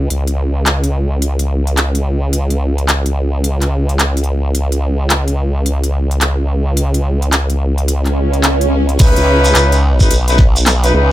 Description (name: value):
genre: glitch hop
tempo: 108 BPM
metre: 4/4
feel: swing 63% on 16ths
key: C# minor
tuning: A4 = 440 Hz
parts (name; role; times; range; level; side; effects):
- formant-sweep wobble bass; bass; 0.0-11.1 s; B1 to C#2; -14 LUFS; equal; chorus, tube saturation
- pop drum kit; drums; 0.1-10.9 s; crash cymbal, handclaps, hi-hat, snare drum; -17 LUFS; equal; small room ambience
- swell; sound effects; 8.1-9.0 s; none; -18 LUFS; right 2 dB; none
- mellow horn section; stabs; 9.0-11.1 s; C#4 to B4; -15 LUFS; left 1 dB; sidechain pumping, digital delay
- electronic kick drum; drums; 9.0-10.5 s; none; -10 LUFS; equal; small room ambience
- shekere; percussion; 9.0-10.9 s; none; -21 LUFS; right 2 dB; none
room: little or no reverb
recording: none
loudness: -12 LUFS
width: side -14 dB against mid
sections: 0.0-9.0 A section; 9.0-11.1 B section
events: swell 8.1-9.0; drop 9.0-11.1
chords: 0.0 N.C.; 9.0 C#m9